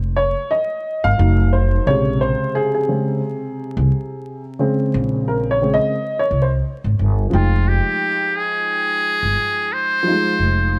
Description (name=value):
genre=hip hop, jazz-hop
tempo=88 BPM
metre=4/4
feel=swing 57% on 16ths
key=F minor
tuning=A4 = 444 Hz
part: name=upright bass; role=bass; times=0.0-10.8 s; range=F1 to C2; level=-20 LUFS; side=equal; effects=none
part: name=dark upright piano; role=accompaniment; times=0.2-10.8 s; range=C3 to G5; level=-22 LUFS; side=equal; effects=none
part: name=trumpet with metal mute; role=melody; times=7.3-10.8 s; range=F4 to C5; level=-21 LUFS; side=equal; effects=none
room=light reverb, small room ambience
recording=dark, warm production, vinyl crackle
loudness=-19 LUFS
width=mono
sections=0.0-7.3 A section; 7.3-10.8 B section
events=upright piano solo 0.0-7.3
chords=0.0 F7(no3); 1.2 F7b9; 1.9 Bbm9; 7.3 Fm9